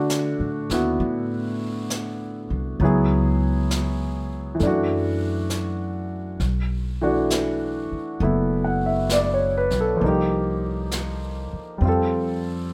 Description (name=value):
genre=jazz ballad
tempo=66 BPM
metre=4/4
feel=swing 68% on 8ths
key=D major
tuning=A4 = 439 Hz
part: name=warm concert grand piano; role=accompaniment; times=0.0-12.7 s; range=D3 to F#5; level=-26 LUFS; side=equal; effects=none
part: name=upright bass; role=bass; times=0.0-12.7 s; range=F#1 to D3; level=-28 LUFS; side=equal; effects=none
part: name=jazz brush drum kit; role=drums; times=0.1-12.7 s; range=brushed snare drum, hi-hat, snare drum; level=-33 LUFS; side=equal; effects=none
room=light reverb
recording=none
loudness=-23 LUFS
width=mono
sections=0.0-12.7 A section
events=none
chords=0.0 Dadd9; 2.8 C#m7; 4.6 Dadd9/F#; 6.4 Bm7; 10.0 Cm7; 11.8 Fadd9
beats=0.10 1.01 1.91 | 2.81 3.71 4.61 5.50 | 6.41 7.31 8.21 9.11 | 10.01 10.92 11.82